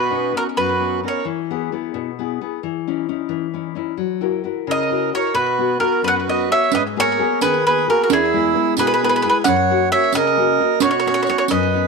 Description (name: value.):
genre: italian folk, Italian serenade.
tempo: 88 BPM (dotted quarters).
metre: 6/8.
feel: straight.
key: B major.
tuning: A4 = 440 Hz.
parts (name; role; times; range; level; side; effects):
bowl-back mandolin; melody; 0.0-1.3, 4.7-11.9 s; G#4 to F#5; -18 LUFS; right 1 dB; slapback echo.
accordion; second line; 0.0-1.2, 4.7-11.9 s; E4 to C#5; -21 LUFS; right 15 dB; slapback echo.
nylon-string guitar; accompaniment; 0.0-11.9 s; E2 to A#4; -22 LUFS; left 12 dB; none.
riq; percussion; 6.7-11.7 s; none; -21 LUFS; right 17 dB; none.
room: light reverb, small room reverb.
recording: 1960s-style stereo with parts hard left and right.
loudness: -16 LUFS.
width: side -4 dB against mid.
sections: 0.0-6.7 A section; 6.7-11.9 A section.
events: none.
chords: 0.0 Badd9; 1.2 E; 2.6 C#madd9/E; 4.0 F#7; 5.3 B; 6.7 G#madd9; 8.1 E; 9.5 F#; 10.8 Badd9.